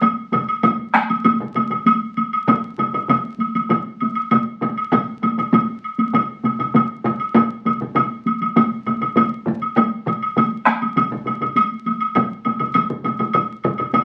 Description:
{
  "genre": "japanese traditional, taiko drum ensemble",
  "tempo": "99 BPM",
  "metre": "4/4",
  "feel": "straight",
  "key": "none",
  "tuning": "none",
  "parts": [
    { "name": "taiko ensemble", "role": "percussion", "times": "0.0-14.0 s", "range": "none", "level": "-23 LUFS", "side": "equal", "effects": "none" },
    { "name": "taiko ensemble", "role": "percussion", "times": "0.0-13.8 s", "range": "none", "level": "-25 LUFS", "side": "equal", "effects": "none" },
    { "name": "woodblock", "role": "percussion", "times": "0.0-14.0 s", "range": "none", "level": "-22 LUFS", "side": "equal", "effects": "none" },
    { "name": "taiko ensemble", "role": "percussion", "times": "0.3-14.0 s", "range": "none", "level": "-28 LUFS", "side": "equal", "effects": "none" },
    { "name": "taiko ensemble", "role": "percussion", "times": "0.3-14.0 s", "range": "none", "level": "-28 LUFS", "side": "equal", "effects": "none" }
  ],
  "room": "wet studio ambience, RT60 0.5 s",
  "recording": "very old 78 rpm record, vinyl crackle, lossy compression artefacts",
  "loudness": "-19 LUFS",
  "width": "mono",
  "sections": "0.0-14.0 A section",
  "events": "speeding up 0.0-14.0",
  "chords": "none",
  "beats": "| 0.02 0.64 1.25 1.86 | 2.48 3.09 3.70 4.31 | 4.92 5.53 6.14 6.75 | 7.35 7.96 8.56 9.16 | 9.76 10.36 10.96 11.56 | 12.16 12.75 13.35 13.94"
}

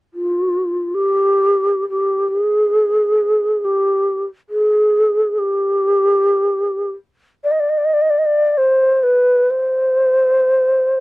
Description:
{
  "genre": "arabic",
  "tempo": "free time",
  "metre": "none",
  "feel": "none",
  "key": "G maqam hijaz",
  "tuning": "A4 = 440 Hz",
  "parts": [
    { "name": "breathy mellow low ney", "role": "melody", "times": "0.1-11.0 s", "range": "F4 to Eb5", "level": "-14 LUFS", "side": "equal", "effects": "none" }
  ],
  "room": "light reverb",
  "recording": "dry, close 1970s-style studio recording",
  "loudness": "-14 LUFS",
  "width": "side -21 dB against mid",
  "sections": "0.0-11.0 A section",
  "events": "none",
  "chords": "none",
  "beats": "free time"
}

